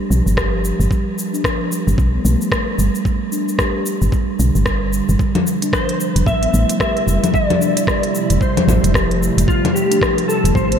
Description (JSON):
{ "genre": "organic downtempo", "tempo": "112 BPM", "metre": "4/4", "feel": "swing 59% on 16ths", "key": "G mixolydian", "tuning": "A4 = 440 Hz", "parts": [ { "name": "steel tongue drum", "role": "arpeggios", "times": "0.1-10.8 s", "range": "D3 to G4", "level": "-21 LUFS", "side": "right 2 dB", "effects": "vintage 12-bit sampler grit, ping-pong delay" }, { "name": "woody FM bass", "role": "bass", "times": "0.1-10.8 s", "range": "F1 to B1", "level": "-16 LUFS", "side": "equal", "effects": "sidechain pumping" }, { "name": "organic electronic drum kit", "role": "drums", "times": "0.1-10.8 s", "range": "congas, hi-hat, rim click, shaker", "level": "-21 LUFS", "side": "left 3 dB", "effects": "none" }, { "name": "electronic kick drum", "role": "drums", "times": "0.4-10.7 s", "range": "none", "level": "-20 LUFS", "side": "equal", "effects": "none" }, { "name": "ethereal airy pad", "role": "sustained chords", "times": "6.1-10.8 s", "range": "C3 to F4", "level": "-24 LUFS", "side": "right 1 dB", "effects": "ensemble chorus, built-in reverb, sidechain pumping" }, { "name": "clean lap steel guitar", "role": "melody", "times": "5.7-10.8 s", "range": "F4 to E5", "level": "-20 LUFS", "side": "equal", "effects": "ensemble chorus, ping-pong delay" } ], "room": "moderate huge ambient reverb, RT60 7.7 s", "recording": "dreamy mix soaked in reverb", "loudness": "-14 LUFS", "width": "side -8 dB against mid", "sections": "0.0-10.8 A section", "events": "none", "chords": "0.0 G; 5.2 Fmaj7" }